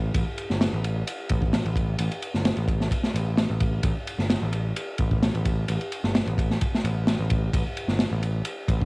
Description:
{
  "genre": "breakbeat, breaks",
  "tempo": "130 BPM",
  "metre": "4/4",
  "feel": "straight",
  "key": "unclear",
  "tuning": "A4 = 440 Hz",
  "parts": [
    { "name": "overdriven picked electric bass", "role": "bass", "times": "0.0-8.8 s", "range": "G1 to A1", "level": "-26 LUFS", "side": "equal", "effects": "none" },
    { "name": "crunchy breakbeat drum kit", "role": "drums", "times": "0.1-8.8 s", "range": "kick drum, ride cymbal, snare drum", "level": "-25 LUFS", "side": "equal", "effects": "cassette tape" }
  ],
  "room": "light reverb",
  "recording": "home recording on cassette",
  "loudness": "-23 LUFS",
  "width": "side -29 dB against mid",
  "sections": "0.0-8.8 A section",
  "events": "none",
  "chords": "none"
}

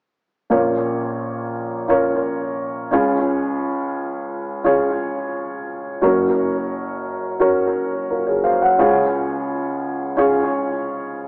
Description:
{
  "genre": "pop",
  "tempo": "87 BPM",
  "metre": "4/4",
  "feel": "straight",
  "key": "Bb minor",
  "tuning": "A4 = 440 Hz",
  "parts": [
    { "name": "dark upright piano", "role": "accompaniment", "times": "0.5-11.3 s", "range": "Gb1 to Gb5", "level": "-20 LUFS", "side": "equal", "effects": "analog delay" }
  ],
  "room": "moderate spring reverb, RT60 1.5 s",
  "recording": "echo-heavy mix, small speaker sound",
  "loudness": "-20 LUFS",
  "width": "mono",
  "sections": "0.5-11.3 A section",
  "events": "none",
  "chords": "0.5 Bbm; 2.9 Db; 6.0 Gb; 8.8 Db"
}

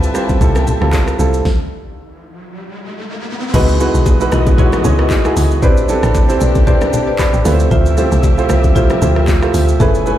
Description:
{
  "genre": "amapiano",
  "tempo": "115 BPM",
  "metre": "4/4",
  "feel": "swing 55% on 16ths",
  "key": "unclear",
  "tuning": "A4 = 442 Hz",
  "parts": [
    { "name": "warm baby grand piano", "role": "accompaniment", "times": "0.0-10.2 s", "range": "G3 to B5", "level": "-17 LUFS", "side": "right 4 dB", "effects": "none" },
    { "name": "muted studio string section", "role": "sustained chords", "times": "0.0-10.2 s", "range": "B2 to A5", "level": "-24 LUFS", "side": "left 2 dB", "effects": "sidechain pumping" },
    { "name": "woody log drum bass", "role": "bass", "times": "0.0-10.2 s", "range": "F#1 to D2", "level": "-15 LUFS", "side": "equal", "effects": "none" },
    { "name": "smooth R&B drum kit", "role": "drums", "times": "0.0-10.2 s", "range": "crash cymbal, handclaps, hi-hat, kick drum, rim click, shaker, snare drum", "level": "-16 LUFS", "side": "equal", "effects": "none" },
    { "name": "bongos and congas", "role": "percussion", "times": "0.3-10.2 s", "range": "none", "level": "-22 LUFS", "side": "left 4 dB", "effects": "none" },
    { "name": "riser", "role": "sound effects", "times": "2.2-3.5 s", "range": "none", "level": "-26 LUFS", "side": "left 1 dB", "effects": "none" },
    { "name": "marimba with medium mallets", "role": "stabs", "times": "3.5-10.2 s", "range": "E4 to E5", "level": "-19 LUFS", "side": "left 3 dB", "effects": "digital delay" }
  ],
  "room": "small room ambience",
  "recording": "played on a big sound system in a bare room, large studio reverb",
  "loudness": "-11 LUFS",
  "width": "side -12 dB against mid",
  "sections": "0.0-3.5 A section; 3.5-10.2 B section",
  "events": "stop 1.5-3.5; riser 2.2-3.5; drop 3.5-10.2",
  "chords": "0.0 Dm11 (rootless); 1.5 N.C.; 3.5 C#m11; 5.6 Am11; 7.5 Dm11"
}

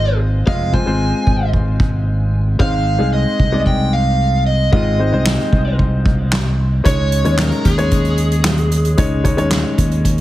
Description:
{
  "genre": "piano-driven pop",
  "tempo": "113 BPM",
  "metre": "4/4",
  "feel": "straight",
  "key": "Ab major",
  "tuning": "A4 = 440 Hz",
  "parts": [
    { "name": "lead guitar through a small cranked amp", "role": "melody", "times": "0.0-10.2 s", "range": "Ab4 to Ab5", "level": "-22 LUFS", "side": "right 2 dB", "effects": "overdrive, tape echo" },
    { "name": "clear upright piano", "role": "accompaniment", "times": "0.0-10.2 s", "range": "Ab2 to Eb5", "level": "-20 LUFS", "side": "left 2 dB", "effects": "none" },
    { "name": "fingered electric bass", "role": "bass", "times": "0.0-10.2 s", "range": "F1 to Eb2", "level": "-16 LUFS", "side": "equal", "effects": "none" },
    { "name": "soft-mallet drum kit", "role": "drums", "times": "0.5-10.2 s", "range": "handclaps, hi-hat, kick drum, snare drum", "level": "-18 LUFS", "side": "equal", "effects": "none" }
  ],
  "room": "studio ambience",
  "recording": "heavily compressed radio sound, multiband compression",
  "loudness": "-13 LUFS",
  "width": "side -15 dB against mid",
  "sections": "0.0-10.2 A section",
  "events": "upright piano fill 10.1",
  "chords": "0.0 Fm; 2.6 Ab; 6.9 Dbsus2"
}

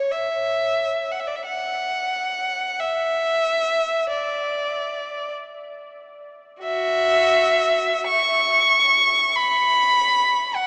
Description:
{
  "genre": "classical, free, expressive piece for unaccompanied violin",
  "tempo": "38-51 BPM (dotted quarters)",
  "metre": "6/8",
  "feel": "rubato",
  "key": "unclear",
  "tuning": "A4 = 441 Hz",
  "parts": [
    { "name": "rich violin", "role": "solo", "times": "0.0-10.7 s", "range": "F#4 to C#6", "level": "-18 LUFS", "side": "equal", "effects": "none" }
  ],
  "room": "wet cathedral reverb, RT60 6.3 s",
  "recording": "small speaker sound",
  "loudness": "-18 LUFS",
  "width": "side -36 dB against mid",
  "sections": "0.0-10.7 A section",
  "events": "none",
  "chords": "none"
}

